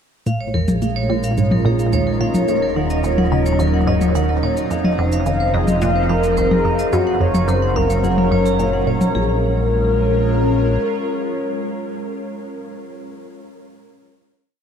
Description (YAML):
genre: ambient, sequencer-driven space music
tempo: 108 BPM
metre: 4/4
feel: straight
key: Bb minor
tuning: A4 = 435 Hz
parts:
  - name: evolving wavetable pad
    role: sustained chords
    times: 0.5-12.1 s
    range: F3 to Db5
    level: -22 LUFS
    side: equal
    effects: chorus, built-in reverb, phaser
  - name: vibraphone with hard mallets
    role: arpeggios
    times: 0.3-9.4 s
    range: Ab4 to Bb5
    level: -26 LUFS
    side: right 2 dB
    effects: auto-pan, tape echo
  - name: resonant blip pluck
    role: riff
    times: 0.3-9.4 s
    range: Bb1 to Eb3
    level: -22 LUFS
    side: right 1 dB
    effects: chorus, phaser, tape echo
  - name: fat analog bass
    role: bass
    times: 0.3-10.8 s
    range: Eb1 to Bb1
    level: -21 LUFS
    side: equal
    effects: none
  - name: electronic cabasa and toms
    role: percussion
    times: 0.3-9.1 s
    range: none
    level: -24 LUFS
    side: left 2 dB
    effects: tape echo
  - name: wind-like tuned noise texture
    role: texture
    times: 1.0-9.2 s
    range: Eb4 to Eb5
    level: -30 LUFS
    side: right 2 dB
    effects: built-in reverb
  - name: mellow horn-like synth lead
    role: melody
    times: 5.3-12.1 s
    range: Gb4 to F5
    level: -22 LUFS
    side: left 2 dB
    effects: chorus, tape echo
room: moderate huge ambient reverb, RT60 8.0 s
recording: dark, warm production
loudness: -15 LUFS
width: side -8 dB against mid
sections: 0.3-9.2 A section; 9.2-11.4 final chord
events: none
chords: 0.3 Bbm7; 2.5 Ebm7; 4.7 Fm7; 6.9 Gbmaj7; 9.2 Bbm7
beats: | 0.26 0.82 1.37 1.93 | 2.48 3.04 3.60 4.15 | 4.71 5.26 5.82 6.37 | 6.93 7.49 8.04 8.60 | 9.15 9.71 10.26 10.82